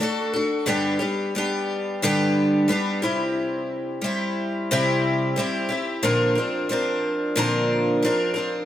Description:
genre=rock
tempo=89 BPM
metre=4/4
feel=straight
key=unclear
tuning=A4 = 445 Hz
part: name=picked twelve-string acoustic guitar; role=solo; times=0.0-8.7 s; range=G2 to Bb4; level=-21 LUFS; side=equal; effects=slapback echo
room=moderate plate reverb, RT60 3.5 s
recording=none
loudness=-21 LUFS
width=side -11 dB against mid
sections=0.0-8.7 A section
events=none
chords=0.0 D; 0.7 G; 3.0 C; 6.0 Bbadd9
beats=0.00 | 0.67 1.34 2.02 2.69 | 3.36 4.03 4.70 5.37 | 6.04 6.71 7.38 8.05

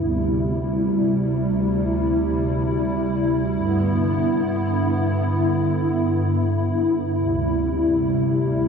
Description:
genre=hip hop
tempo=free time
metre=none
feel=none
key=G major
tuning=A4 = 440 Hz
part: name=hollow soft pad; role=solo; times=0.0-8.7 s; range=D2 to E4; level=-19 LUFS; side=equal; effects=ensemble chorus, ping-pong delay
room=wet huge ambient reverb, RT60 7.3 s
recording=dreamy mix soaked in reverb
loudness=-19 LUFS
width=side -6 dB against mid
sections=0.0-8.7 A section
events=none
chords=0.0 D9sus4; 3.5 G6; 7.2 D9sus4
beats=free time

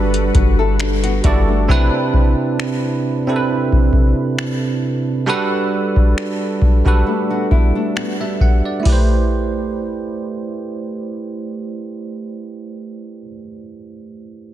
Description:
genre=contemporary R&B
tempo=67 BPM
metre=4/4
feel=swing 54% on 16ths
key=A dorian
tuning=A4 = 441 Hz
part: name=bell-like tine electric piano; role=accompaniment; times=0.0-14.5 s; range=C3 to F#5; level=-20 LUFS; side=right 3 dB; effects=analog chorus
part: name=ethereal airy pad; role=sustained chords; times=0.0-1.7 s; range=G3 to B4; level=-28 LUFS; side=left 3 dB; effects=ensemble chorus, built-in reverb, phaser
part: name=clean 808-style bass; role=bass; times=0.0-1.7 s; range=G1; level=-17 LUFS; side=equal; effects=none
part: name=downlifter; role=sound effects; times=0.0-1.7 s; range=none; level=barely audible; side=none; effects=none
part: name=booming analog drum machine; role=drums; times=0.1-9.1 s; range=finger snaps, hi-hat, kick drum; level=-15 LUFS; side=left 1 dB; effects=vintage 12-bit sampler grit, soft clipping on snare
part: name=nylon-string guitar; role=arpeggios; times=0.3-8.8 s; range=A3 to B4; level=-23 LUFS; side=left 6 dB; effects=ping-pong delay
room=little or no reverb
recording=dense, heavily limited modern master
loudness=-15 LUFS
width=side -12 dB against mid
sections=0.0-8.9 A section; 8.9-12.4 B section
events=none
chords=0.0 Gmaj7; 1.7 Cmaj7; 5.3 Gmaj9; 8.9 Am7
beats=0.80 | 1.69 2.59 3.48 4.38 | 5.27 6.17 7.06 7.96 | 8.86 9.75 10.65 11.54

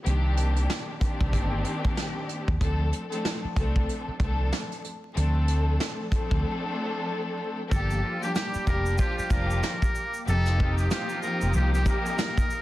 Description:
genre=hip hop, boom-bap hip-hop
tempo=94 BPM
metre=4/4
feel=swing 59% on 16ths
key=unclear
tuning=A4 = 440 Hz
part: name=warm studio string section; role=accompaniment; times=0.0-12.6 s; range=Eb3 to A4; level=-31 LUFS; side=left 1 dB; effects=high-pass filter, low-pass filter
part: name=hollow-body short-scale fingered electric bass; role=bass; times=0.1-11.8 s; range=F1 to Eb2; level=-25 LUFS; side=equal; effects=none
part: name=soft brush drum kit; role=drums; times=0.1-12.5 s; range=hi-hat, kick drum, snare drum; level=-28 LUFS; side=equal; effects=soft clipping on snare
part: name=trumpet with metal mute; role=melody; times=7.7-12.6 s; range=G4 to Bb4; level=-31 LUFS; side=equal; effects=high-pass filter, low-pass filter
part: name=hollow soft pad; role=sustained chords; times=7.7-12.6 s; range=Bb3 to Eb6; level=-40 LUFS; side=left 1 dB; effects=ensemble chorus, high-pass filter, low-pass filter
part: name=tube shaker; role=percussion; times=7.7-12.6 s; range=none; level=-46 LUFS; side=right 3 dB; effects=none
part: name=warm horn section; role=stabs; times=8.0-12.3 s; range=Eb3 to G4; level=-37 LUFS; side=right 2 dB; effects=high-pass filter, low-pass filter, digital delay
room=studio reverb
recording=dense, heavily limited modern master, vinyl crackle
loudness=-24 LUFS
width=side -16 dB against mid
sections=0.0-7.7 A section; 7.7-12.6 B section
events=break 6.4-7.7; hi-hats muted 7.7-12.6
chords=0.0 Cm9; 2.6 Dm7; 7.7 Gm7; 10.3 F9sus4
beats=| 0.05 0.69 1.33 1.97 | 2.61 3.25 3.88 4.52 | 5.16 5.80 6.44 7.08 | 7.71 8.35 8.99 9.63 | 10.27 10.90 11.54 12.18

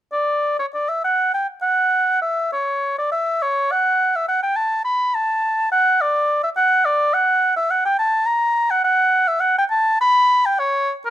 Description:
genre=classical, baroque-style fantasia for unaccompanied oboe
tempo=104 BPM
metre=3/4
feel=rubato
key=unclear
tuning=A4 = 441 Hz
part: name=warm oboe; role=solo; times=0.1-11.1 s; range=A#4 to B5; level=-16 LUFS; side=equal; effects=none
room=light reverb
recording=close, detailed microphones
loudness=-16 LUFS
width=side -12 dB against mid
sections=0.1-11.1 A section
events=none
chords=none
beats=| 0.13 0.74 1.33 | 1.92 2.52 3.11 | 3.70 4.28 4.85 | 5.43 6.00 6.57 | 7.14 7.71 8.28 | 8.85 9.42 10.00 | 10.59

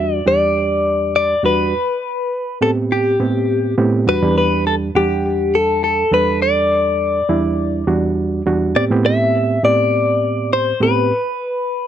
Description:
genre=blues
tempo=102 BPM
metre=4/4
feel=swing 53% on 16ths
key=E minor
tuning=A4 = 441 Hz
part: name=direct-recorded clean electric guitar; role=melody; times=0.0-11.9 s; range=G4 to E5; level=-16 LUFS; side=left 2 dB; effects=phaser
part: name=overdriven reed electric piano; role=accompaniment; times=0.0-11.1 s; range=E2 to F#5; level=-18 LUFS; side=right 2 dB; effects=none
room=light reverb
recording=dry, close 1970s-style studio recording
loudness=-14 LUFS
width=side -10 dB against mid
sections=0.0-11.9 A section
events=none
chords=0.0 Em7; 1.7 Am7; 4.1 Em7; 8.8 Am7; 11.1 N.C.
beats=0.56 1.14 | 1.73 2.32 2.90 3.49 | 4.08 4.66 5.25 5.83 | 6.42 7.00 7.59 8.17 | 8.76 9.34 9.93 10.51 | 11.10 11.69

